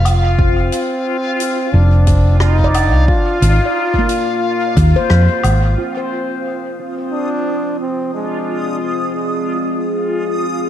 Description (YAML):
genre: ambient dub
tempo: 89 BPM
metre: 4/4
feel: swing 55% on 16ths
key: F dorian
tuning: A4 = 440 Hz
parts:
  - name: hollow-body short-scale fingered electric bass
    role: bass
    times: 0.0-5.7 s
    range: F1 to F2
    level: -11 LUFS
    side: equal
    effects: tube saturation
  - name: backwards swelling texture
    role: texture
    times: 0.0-10.7 s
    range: F4 to Eb6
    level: -22 LUFS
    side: left 2 dB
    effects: built-in reverb
  - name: soft-mallet drum kit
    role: drums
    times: 0.1-5.6 s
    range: hi-hat, rim click, woodblock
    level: -25 LUFS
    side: right 1 dB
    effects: dub echo
  - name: clear trombone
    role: melody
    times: 0.4-9.4 s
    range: Ab3 to F4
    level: -21 LUFS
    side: equal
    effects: tape echo
  - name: electronic kick drum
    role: drums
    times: 0.4-4.9 s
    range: none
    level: -17 LUFS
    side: equal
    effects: overdrive
  - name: handpan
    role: arpeggios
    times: 2.6-7.5 s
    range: Bb3 to D5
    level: -22 LUFS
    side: equal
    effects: vintage 12-bit sampler grit, low-pass filter, tape echo
  - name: deep dark ambient pad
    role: sustained chords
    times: 6.8-10.7 s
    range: C4 to F5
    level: -22 LUFS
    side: equal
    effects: chorus, built-in reverb
room: light reverb, small room ambience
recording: echo-heavy mix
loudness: -13 LUFS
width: side -11 dB against mid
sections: 0.0-5.8 A section; 5.8-10.7 B section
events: band accent 5.1-5.4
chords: 0.0 F5; 5.8 Fm7